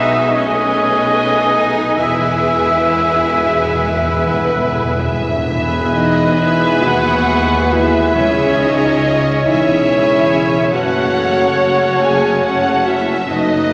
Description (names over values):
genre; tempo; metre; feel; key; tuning
classical, slow romantic movement for symphony orchestra; 31-48 BPM (dotted quarters); 6/8; rubato; E major; A4 = 440 Hz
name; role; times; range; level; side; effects
dark studio violin section; melody; 0.0-13.7 s; F#4 to G#5; -25 LUFS; equal; none
clear clarinet; second line; 0.0-13.7 s; A4 to E5; -26 LUFS; equal; none
clear oboe; second line; 0.0-5.0 s; C#5 to E5; -23 LUFS; equal; none
clear studio violin section; second line; 0.0-13.7 s; C#5 to A5; -28 LUFS; equal; none
mellow hollow silver concert flute; second line; 0.0-13.7 s; B4 to G#5; -28 LUFS; equal; none
rich studio viola section; accompaniment; 0.0-13.7 s; A3 to B4; -25 LUFS; equal; none
dark French horn section; sustained chords; 0.0-13.7 s; B3 to B4; -22 LUFS; equal; none
warm trombone section; sustained chords; 0.0-13.7 s; B2 to A3; -28 LUFS; equal; none
clear trumpet; stabs; 0.0-13.7 s; B4 to E5; -21 LUFS; equal; none
clear studio cello section; bass; 0.0-13.7 s; C#2 to E4; -27 LUFS; equal; none
rich studio double bass section; bass; 0.0-13.7 s; E1 to E2; -26 LUFS; equal; none
warm tuba; bass; 0.0-13.7 s; E1 to D#2; -29 LUFS; equal; none
timpani; percussion; 0.0-9.4 s; E2 to C#3; -27 LUFS; equal; none
room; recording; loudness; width
wet concert hall reverb, RT60 2.4 s; nothing above 10.5 kHz; -15 LUFS; mono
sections
0.0-5.5 A section; 5.5-13.7 B section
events
timpani fill 2.0-5.5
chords
0.3 B13; 2.0 E; 8.2 C#m; 10.7 F#m